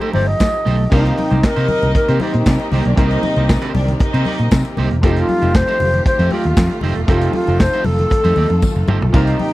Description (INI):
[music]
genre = disco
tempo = 117 BPM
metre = 4/4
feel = straight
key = C dorian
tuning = A4 = 441 Hz
[part]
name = alto flute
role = melody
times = 0.0-9.5 s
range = Eb4 to Eb5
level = -19 LUFS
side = equal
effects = none
[part]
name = electric guitar at the edge of break-up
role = accompaniment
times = 0.0-9.4 s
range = A3 to D5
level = -25 LUFS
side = right 7 dB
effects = none
[part]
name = warm concert grand piano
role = accompaniment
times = 0.0-9.5 s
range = C3 to Bb4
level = -26 LUFS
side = left 1 dB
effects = none
[part]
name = clear studio string section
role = sustained chords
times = 0.0-9.5 s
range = Eb3 to A4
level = -26 LUFS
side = equal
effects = none
[part]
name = congas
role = percussion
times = 0.0-9.5 s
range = none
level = -26 LUFS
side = left 4 dB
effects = none
[part]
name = fingered electric bass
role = bass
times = 0.1-9.3 s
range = E1 to C3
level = -16 LUFS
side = equal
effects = none
[part]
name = vintage drum kit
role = drums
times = 0.1-9.5 s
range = crash cymbal, handclaps, hi-hat, kick drum, snare drum, splash cymbal, toms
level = -16 LUFS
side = equal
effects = none
[part]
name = tambourine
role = percussion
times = 0.4-8.8 s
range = none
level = -37 LUFS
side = left 15 dB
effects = none
[part]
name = rich chamber string section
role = second line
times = 0.9-4.7, 9.1-9.5 s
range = C4 to G5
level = -24 LUFS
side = equal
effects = none
[sound]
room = little or no reverb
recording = dry, close 1970s-style studio recording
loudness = -13 LUFS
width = side -17 dB against mid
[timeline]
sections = 0.9-9.5 A section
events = drum fill 8.6-9.1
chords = 0.0 F9; 0.9 Cm7; 5.0 F9